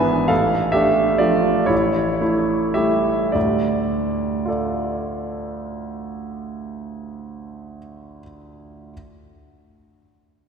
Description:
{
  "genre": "classical, piano waltz",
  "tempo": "97-138 BPM",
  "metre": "3/4",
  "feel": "rubato",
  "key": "D minor",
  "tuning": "A4 = 440 Hz",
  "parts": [
    { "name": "clear concert grand piano", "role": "solo", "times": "0.0-8.9 s", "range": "G#1 to G#5", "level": "-19 LUFS", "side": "right 1 dB", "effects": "none" }
  ],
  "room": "wet church reverb, RT60 3.2 s",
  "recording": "none",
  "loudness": "-17 LUFS",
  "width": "side -6 dB against mid",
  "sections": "0.0-3.4 A section; 3.4-6.7 B section",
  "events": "slowing down 0.0-3.4",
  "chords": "0.3 Dm/A; 1.7 A7; 3.4 Dm"
}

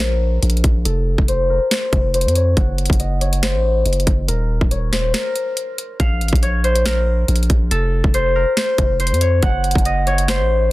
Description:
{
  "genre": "hip hop, trap",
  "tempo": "140 BPM",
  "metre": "4/4",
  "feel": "half-time",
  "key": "Bb harmonic minor",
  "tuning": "A4 = 440 Hz",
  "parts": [
    { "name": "concert harp", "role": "melody", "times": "0.0-10.7 s", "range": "A4 to F#5", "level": "-20 LUFS", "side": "left 1 dB", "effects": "low-pass filter" },
    { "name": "long sustained 808-style bass", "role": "bass", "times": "0.0-10.7 s", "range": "Eb1 to F2", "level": "-18 LUFS", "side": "equal", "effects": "none" },
    { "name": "trap drum kit", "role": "drums", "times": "0.0-10.4 s", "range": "hi-hat, kick drum, snare drum", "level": "-19 LUFS", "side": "equal", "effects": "none" }
  ],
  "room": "little or no reverb",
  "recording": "dense, heavily limited modern master",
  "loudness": "-15 LUFS",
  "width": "side -18 dB against mid",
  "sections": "0.0-10.7 A section",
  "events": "filter sweep on harp 0.0-6.0; break 5.1-6.0",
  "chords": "0.0 Bb5; 0.9 F; 2.6 F#dim7; 4.3 Eb5; 6.0 Bb5; 7.7 F; 9.4 F#dim7"
}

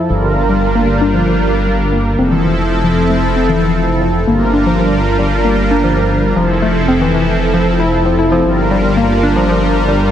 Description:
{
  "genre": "IDM",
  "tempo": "115 BPM",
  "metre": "4/4",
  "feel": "straight",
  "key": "G dorian",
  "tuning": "A4 = 437 Hz",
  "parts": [
    { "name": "warm analog pad", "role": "sustained chords", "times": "0.0-10.1 s", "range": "F3 to Bb4", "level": "-15 LUFS", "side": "right 1 dB", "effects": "chorus" },
    { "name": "warbly dusty pluck", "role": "arpeggios", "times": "0.1-10.0 s", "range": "E3 to E4", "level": "-16 LUFS", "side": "left 2 dB", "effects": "chorus, tape echo" },
    { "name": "dark detuned saw bass", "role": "bass", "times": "0.1-10.1 s", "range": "F1 to G1", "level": "-17 LUFS", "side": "equal", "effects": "none" }
  ],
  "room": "light reverb, digital ambience",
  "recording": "none",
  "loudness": "-11 LUFS",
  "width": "side -10 dB against mid",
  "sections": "0.1-10.1 A section",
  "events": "none",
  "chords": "0.1 Gm7; 2.2 Fmaj7; 4.3 Gm7; 6.4 Fmaj7; 8.4 Gm7"
}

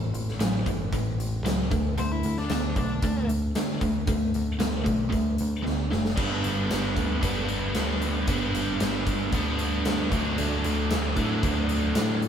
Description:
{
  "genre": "classic rock",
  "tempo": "114 BPM",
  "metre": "4/4",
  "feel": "straight",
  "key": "unclear",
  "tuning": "A4 = 439 Hz",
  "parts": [
    { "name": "biting overdriven guitar", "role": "riff", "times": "0.0-12.2 s", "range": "G2 to D4", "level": "-27 LUFS", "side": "right 1 dB", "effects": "none" },
    { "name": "picked electric bass", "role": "bass", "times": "0.0-12.3 s", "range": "F#1 to A2", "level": "-29 LUFS", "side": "equal", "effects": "none" },
    { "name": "big rock drum kit", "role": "drums", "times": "0.1-12.3 s", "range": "crash cymbal, hi-hat, kick drum, snare drum, tambourine", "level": "-29 LUFS", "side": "equal", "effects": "none" },
    { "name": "octave-fuzz lead guitar", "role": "second line", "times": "2.0-3.3 s", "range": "D4 to C5", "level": "-33 LUFS", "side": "left 4 dB", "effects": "distortion" },
    { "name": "tonewheel organ", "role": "sustained chords", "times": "10.4-12.3 s", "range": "D4 to D5", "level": "-37 LUFS", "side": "right 2 dB", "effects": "overdrive, chorus vibrato, slow rotary speaker" }
  ],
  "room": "moderate stone room reverb, RT60 1.1 s",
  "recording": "band playing live in one room",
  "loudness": "-24 LUFS",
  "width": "side -8 dB against mid",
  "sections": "0.0-6.2 A section; 6.2-12.3 B section",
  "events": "drum fill 5.7-6.2",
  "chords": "0.0 A; 1.7 D5; 6.2 G; 10.1 D"
}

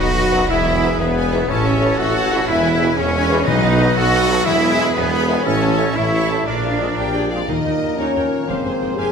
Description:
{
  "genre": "cinematic",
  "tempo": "120 BPM (dotted quarters)",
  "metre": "6/8",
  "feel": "straight",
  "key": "unclear",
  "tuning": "A4 = 440 Hz",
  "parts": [
    { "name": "rich symphonic violin section", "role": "melody", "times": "0.0-9.1 s", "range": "C5 to C#6", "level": "-28 LUFS", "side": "left 3 dB", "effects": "none" },
    { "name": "clear symphonic violin section", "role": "second line", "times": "0.0-9.1 s", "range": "Ab4 to F#5", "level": "-28 LUFS", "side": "left 2 dB", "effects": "none" },
    { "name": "silver concert flute", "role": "second line", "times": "0.0-9.1 s", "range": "B4 to Ab5", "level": "-27 LUFS", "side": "left 1 dB", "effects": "none" },
    { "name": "warm oboe", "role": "second line", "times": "0.0-7.2 s", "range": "G#4 to C#5", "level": "-28 LUFS", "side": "right 1 dB", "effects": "none" },
    { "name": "clear symphonic viola section", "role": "accompaniment", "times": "0.0-9.1 s", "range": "Eb4 to Ab5", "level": "-28 LUFS", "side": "right 1 dB", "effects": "none" },
    { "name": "concert harp", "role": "arpeggios", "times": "0.0-9.1 s", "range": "E2 to A#5", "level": "-27 LUFS", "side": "left 10 dB", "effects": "none" },
    { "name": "bright trumpet", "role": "stabs", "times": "0.0-9.1 s", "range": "B3 to C5", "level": "-25 LUFS", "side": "right 2 dB", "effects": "none" },
    { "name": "clear symphonic cello section", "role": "bass", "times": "0.0-9.0 s", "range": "Eb2 to F#4", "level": "-22 LUFS", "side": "right 1 dB", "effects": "none" },
    { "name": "rich symphonic double bass section", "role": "bass", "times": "0.0-9.1 s", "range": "F1 to E2", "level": "-24 LUFS", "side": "right 2 dB", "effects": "none" },
    { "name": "warm tuba", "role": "bass", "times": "0.0-7.4 s", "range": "E1 to B1", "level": "-23 LUFS", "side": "right 3 dB", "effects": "none" },
    { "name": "warm French horn section", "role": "sustained chords", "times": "0.3-9.1 s", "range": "A#3 to B4", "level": "-26 LUFS", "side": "left 3 dB", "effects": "none" },
    { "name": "warm trombone section", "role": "sustained chords", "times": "0.3-9.1 s", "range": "E#2 to Bb3", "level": "-29 LUFS", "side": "right 2 dB", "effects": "none" },
    { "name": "timpani", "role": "percussion", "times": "3.5-3.9, 7.5-8.0 s", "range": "B2 to Eb3", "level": "-28 LUFS", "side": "left 2 dB", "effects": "none" }
  ],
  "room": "wet scoring stage reverb, RT60 1.7 s",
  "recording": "none",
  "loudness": "-15 LUFS",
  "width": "side -6 dB against mid",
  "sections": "0.0-7.5 A section; 7.5-9.1 B section",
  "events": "none",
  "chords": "0.5 E; 1.5 A; 2.5 E; 3.5 B; 4.5 E; 5.5 A; 6.5 A#7; 7.5 Eb; 8.5 Fmadd9"
}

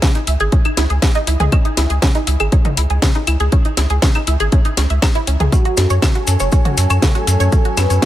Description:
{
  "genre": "melodic techno",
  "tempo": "120 BPM",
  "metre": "4/4",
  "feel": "straight",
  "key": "C# minor",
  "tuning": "A4 = 441 Hz",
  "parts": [
    { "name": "wide unison pluck", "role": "arpeggios", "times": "0.0-8.1 s", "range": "C#4 to E5", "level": "-22 LUFS", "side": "right 1 dB", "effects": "flanger, sidechain pumping, tape echo" },
    { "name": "electronic kick drum", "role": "drums", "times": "0.0-8.1 s", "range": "none", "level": "-14 LUFS", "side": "equal", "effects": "none" },
    { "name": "house drum kit", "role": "drums", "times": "0.0-8.1 s", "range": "claves, hi-hat, snare drum, toms", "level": "-20 LUFS", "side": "left 1 dB", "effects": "none" },
    { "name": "round analog bass", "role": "bass", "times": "0.3-8.0 s", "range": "F#1 to F#2", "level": "-15 LUFS", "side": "equal", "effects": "sidechain pumping" },
    { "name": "fat analog lead", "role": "melody", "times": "5.5-8.1 s", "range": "F#4 to B4", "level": "-24 LUFS", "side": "equal", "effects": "wide subtle chorus, sidechain pumping, dub echo" },
    { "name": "evolving wavetable pad", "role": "sustained chords", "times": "5.9-8.1 s", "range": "F#3 to G#5", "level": "-23 LUFS", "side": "equal", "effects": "chorus, built-in reverb, sidechain pumping" },
    { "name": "maracas", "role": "percussion", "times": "5.5-8.1 s", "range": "none", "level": "-26 LUFS", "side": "left 2 dB", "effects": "none" }
  ],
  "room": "little or no reverb",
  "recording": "none",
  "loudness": "-13 LUFS",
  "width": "side -13 dB against mid",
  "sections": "0.0-8.1 A section",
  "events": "none",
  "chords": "0.0 C#madd9; 5.5 F#m"
}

